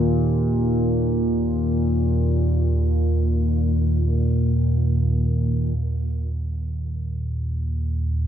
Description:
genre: ambient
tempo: free time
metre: none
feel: none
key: unclear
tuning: A4 = 440 Hz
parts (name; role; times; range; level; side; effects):
- analog drone; solo; 0.0-8.3 s; Eb2 to Bb2; -19 LUFS; equal; chorus, dub echo
room: light reverb, digital ambience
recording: echo-heavy mix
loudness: -20 LUFS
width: side -10 dB against mid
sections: 0.0-5.8 A section; 5.8-8.3 B section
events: none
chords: 0.0 Eb5

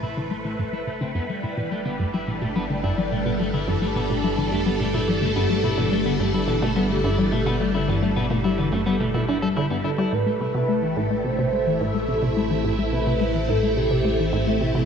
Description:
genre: ambient, sequencer-driven space music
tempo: 107 BPM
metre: 4/4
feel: straight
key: A minor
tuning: A4 = 437 Hz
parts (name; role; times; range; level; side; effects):
- phased string machine; sustained chords; 0.0-14.9 s; G3 to C5; -26 LUFS; equal; ensemble chorus, phaser, shimmer reverb
- electric guitar at the edge of break-up; arpeggios; 0.0-10.1 s; A2 to A4; -29 LUFS; moving between left 6 dB and right 1 dB; auto-pan, shimmer reverb, ping-pong delay
- resonant blip pluck; riff; 0.0-14.8 s; G2 to D4; -24 LUFS; left 1 dB; chorus, ping-pong delay
- fat analog bass; bass; 0.0-14.9 s; A1; -30 LUFS; equal; none
- expressive synth lead; melody; 9.9-14.3 s; G4 to C5; -27 LUFS; right 3 dB; analog chorus, cassette tape, shimmer reverb, ping-pong delay
room: wet scoring stage reverb, RT60 2.1 s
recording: none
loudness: -20 LUFS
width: side -7 dB against mid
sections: 0.0-10.1 A section; 10.1-14.9 A section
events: fade-in on clean electric guitar 0.0-10.1; fade-in on analog synth bass 0.0-10.1; filter sweep on synth arpeggio sound 0.0-10.1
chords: 0.0 Am; 1.2 G; 10.1 Am7

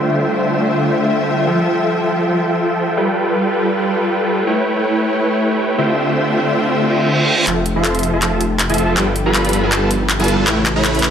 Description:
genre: future bass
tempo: 160 BPM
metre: 4/4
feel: swing 54% on 16ths, half-time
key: F lydian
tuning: A4 = 436 Hz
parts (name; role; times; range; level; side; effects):
- dark studio string section; sustained chords; 0.0-11.1 s; C#3 to E5; -24 LUFS; left 2 dB; low-pass filter
- supersaw chords; riff; 0.0-11.1 s; D3 to C6; -15 LUFS; equal; low-pass filter, tape echo
- reverse cymbal and riser; sound effects; 6.9-11.1 s; none; -24 LUFS; right 3 dB; none
- wide detuned saw bass; bass; 7.5-11.1 s; F1 to A1; -20 LUFS; equal; chorus
- big-room dance drum kit; drums; 7.5-11.1 s; handclaps, hi-hat; -19 LUFS; equal; overdrive, high-pass filter on cymbals, studio reverb, high-pass filter on snare, high-pass filter on hats
room: moderate huge ambient reverb, RT60 5.0 s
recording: none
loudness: -14 LUFS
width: side -8 dB against mid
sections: 0.0-7.5 A section; 7.5-11.1 B section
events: reverse cymbal 6.9-7.5; build-up 7.5-11.1; drum fill 7.5-11.1; filter sweep on supersaw synth 7.5-11.1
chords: 0.0 Dm11; 1.5 Fmaj9; 3.0 G7; 4.5 A7; 5.8 Dm11; 7.5 Fmaj9; 9.0 G7; 10.5 A7

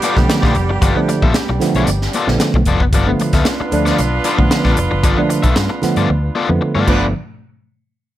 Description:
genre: funk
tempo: 114 BPM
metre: 4/4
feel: straight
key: G mixolydian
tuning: A4 = 440 Hz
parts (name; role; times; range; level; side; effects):
- warm horn section; second line; 0.0-7.1 s; F3 to B4; -22 LUFS; right 3 dB; none
- crunchy overdriven guitar; accompaniment; 0.0-7.0 s; B3 to E5; -20 LUFS; left 6 dB; none
- crisp fusion drum kit; drums; 0.0-7.0 s; crash cymbal, hi-hat, kick drum, snare drum; -18 LUFS; equal; none
- congas; percussion; 0.0-7.1 s; none; -28 LUFS; right 4 dB; none
- tine electric piano; stabs; 0.2-7.1 s; D3 to D4; -18 LUFS; right 2 dB; phaser
- vintage muted fingered electric bass; bass; 0.2-7.1 s; F1 to G2; -19 LUFS; equal; none
room: light reverb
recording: none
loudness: -13 LUFS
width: side -13 dB against mid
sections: 0.0-7.1 A section; 7.1-8.2 B section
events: drum fill 6.1-7.1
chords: 0.0 G9; 7.1 N.C.

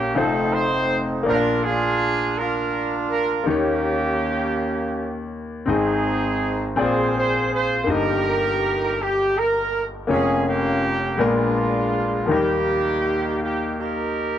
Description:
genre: gospel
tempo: 54 BPM (dotted quarters)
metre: 6/8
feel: straight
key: unclear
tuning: A4 = 439 Hz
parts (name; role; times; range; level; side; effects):
- clear horn section; melody; 0.0-14.4 s; Ab3 to C5; -22 LUFS; right 2 dB; none
- bright concert grand piano; accompaniment; 0.0-14.4 s; F1 to G5; -23 LUFS; left 3 dB; none
room: light reverb, studio reverb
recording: dry, close 1970s-style studio recording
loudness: -19 LUFS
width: side -10 dB against mid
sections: 0.0-14.4 A section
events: none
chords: 0.2 F7; 1.3 Bb; 3.5 Eb7; 5.7 Ab; 6.8 Bb13; 7.9 Eb/G; 10.1 Bbm/F; 11.2 Bb7b9; 12.3 Eb

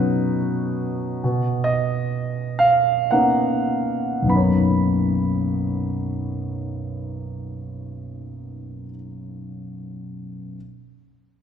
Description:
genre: classical, lyrical solo piano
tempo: 45-76 BPM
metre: 3/4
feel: rubato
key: B major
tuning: A4 = 439 Hz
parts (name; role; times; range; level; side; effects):
- warm grand piano; solo; 0.0-10.6 s; B1 to B5; -21 LUFS; equal; none
room: wet concert hall reverb, RT60 1.7 s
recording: recorded in a church or concert hall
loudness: -19 LUFS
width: side -8 dB against mid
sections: 0.0-1.2 A section; 1.2-4.3 B section; 4.3-8.1 C section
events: slowing down 0.0-4.3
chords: 0.0 Badd9; 1.2 Bmaj9

